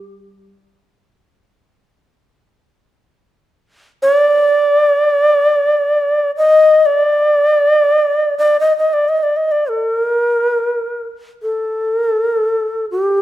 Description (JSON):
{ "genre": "japanese traditional, Japanese chamber music", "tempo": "free time", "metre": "none", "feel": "none", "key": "G hirajoshi", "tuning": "A4 = 440 Hz", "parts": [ { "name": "koto", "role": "accompaniment", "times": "0.0-0.5 s", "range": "G3", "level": "-50 LUFS", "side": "equal", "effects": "none" }, { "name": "breathy bright long shakuhachi", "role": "melody", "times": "4.0-13.2 s", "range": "G4 to Eb5", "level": "-12 LUFS", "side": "equal", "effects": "none" } ], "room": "moderate recital hall reverb, RT60 1.5 s", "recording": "minimal, uncompressed stereo recording", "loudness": "-12 LUFS", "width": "side -14 dB against mid", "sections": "0.0-2.5 A section; 2.5-13.2 A section", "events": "none", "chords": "none", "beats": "free time" }